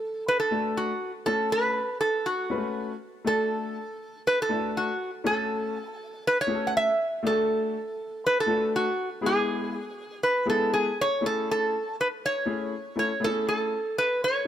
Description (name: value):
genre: soul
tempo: 120 BPM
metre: 4/4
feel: straight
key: A major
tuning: A4 = 440 Hz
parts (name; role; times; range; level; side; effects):
- metal-body resonator slide guitar; melody; 0.0-14.5 s; F#4 to F#5; -25 LUFS; right 1 dB; none
- clear upright piano; accompaniment; 0.5-14.5 s; G#3 to B4; -30 LUFS; left 4 dB; none
room: light reverb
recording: none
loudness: -24 LUFS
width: side -10 dB against mid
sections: 0.0-11.2 A section; 11.2-14.5 B section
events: none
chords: 0.0 D; 1.3 F#m; 3.2 D; 5.2 F#m; 7.2 D; 9.2 E; 11.2 Amaj7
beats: 0.26 0.76 | 1.25 1.75 2.25 2.74 | 3.24 3.74 4.24 4.73 | 5.23 5.73 6.22 6.72 | 7.22 7.72 8.22 8.71 | 9.21 9.71 10.21 10.71 | 11.21 11.71 12.21 12.71 | 13.21 13.71 14.21